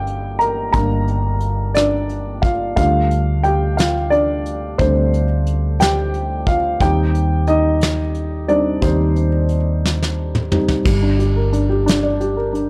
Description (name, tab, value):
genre	six-eight pop ballad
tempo	59 BPM (dotted quarters)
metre	6/8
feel	straight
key	G minor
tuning	A4 = 442 Hz
part	dark upright piano	accompaniment	0.0-12.7 s	G3 to Bb5	-21 LUFS	equal	none
part	vintage muted fingered electric bass	bass	0.0-12.7 s	G1 to Eb2	-22 LUFS	equal	none
part	soft brush drum kit	drums	0.1-12.7 s	crash cymbal, hi-hat, kick drum, rim click, snare drum, toms	-22 LUFS	equal	none
room	light reverb, studio ambience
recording	dry, gritty hardware recording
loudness	-18 LUFS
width	mono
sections	0.0-10.9 A section; 10.9-12.7 B section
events	upright piano solo 0.0-10.9; drum fill 9.8-10.9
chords	0.0 Gm; 2.8 Dsus4; 6.8 Cm/Eb; 10.9 Gm